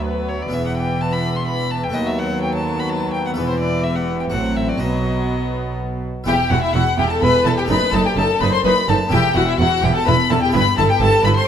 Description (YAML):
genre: classical, baroque-style concerto movement with solo episodes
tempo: 126 BPM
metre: 3/4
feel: straight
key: E minor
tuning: A4 = 445 Hz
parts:
  - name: rich violin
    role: melody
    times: 0.0-11.5 s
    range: B4 to C6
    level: -24 LUFS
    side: left 2 dB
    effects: none
  - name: warm chamber violin section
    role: melody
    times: 0.0-11.5 s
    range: F#4 to C6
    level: -26 LUFS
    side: left 7 dB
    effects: none
  - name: warm chamber violin section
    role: second line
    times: 0.0-11.5 s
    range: B3 to C5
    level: -22 LUFS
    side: left 3 dB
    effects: none
  - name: harpsichord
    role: accompaniment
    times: 0.0-11.5 s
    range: D2 to C5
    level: -26 LUFS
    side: equal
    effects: none
  - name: rich studio viola section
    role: accompaniment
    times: 0.0-11.3 s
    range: E3 to E4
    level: -26 LUFS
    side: equal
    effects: none
  - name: rich chamber double bass section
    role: bass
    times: 0.0-11.3 s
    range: E1 to D#2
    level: -23 LUFS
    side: right 3 dB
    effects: none
  - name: warm chamber cello section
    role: bass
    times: 0.0-11.3 s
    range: D2 to B2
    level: -23 LUFS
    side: right 2 dB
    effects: none
room: wet recital hall reverb, RT60 1.6 s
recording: none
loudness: -16 LUFS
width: side -8 dB against mid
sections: 0.0-6.3 A section; 6.3-11.5 B section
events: none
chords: 0.0 Bm/D; 0.5 E5; 1.9 B7/D#; 3.4 Em; 4.3 F#dim/A; 4.8 B; 6.3 E5; 7.7 B7/F#; 9.1 E5; 10.5 Em/G